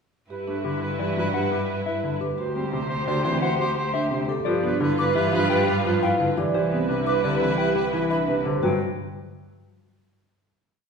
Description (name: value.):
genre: classical, minimalist pattern music.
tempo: 173 BPM.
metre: 6/4.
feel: straight.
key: G major.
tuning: A4 = 440 Hz.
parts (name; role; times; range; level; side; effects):
clear soprano saxophone; second line; 0.3-8.4 s; B4 to C5; -30 LUFS; right 2 dB; none.
rich studio string section; sustained chords; 0.3-8.4 s; E4 to C5; -30 LUFS; left 2 dB; none.
vibraphone with soft mallets; arpeggios; 0.3-8.8 s; C4 to D5; -27 LUFS; right 4 dB; none.
rich cello; bass; 0.3-8.8 s; C2 to G2; -30 LUFS; right 1 dB; none.
clear concert grand piano; accompaniment; 0.5-8.8 s; C3 to B3; -28 LUFS; left 2 dB; none.
mellow electric guitar; melody; 0.6-8.8 s; G4 to G5; -30 LUFS; left 4 dB; none.
hollow concert flute; arpeggios; 5.0-8.8 s; G5 to D6; -33 LUFS; left 3 dB; none.
room: wet recital hall reverb, RT60 1.4 s.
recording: heard from further back in the room.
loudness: -21 LUFS.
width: side -5 dB against mid.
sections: 0.3-8.6 A section; 8.6-10.7 final chord.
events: none.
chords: 0.3 G6; 2.4 D7sus4; 4.5 G7; 6.5 Cmaj7; 8.6 N.C..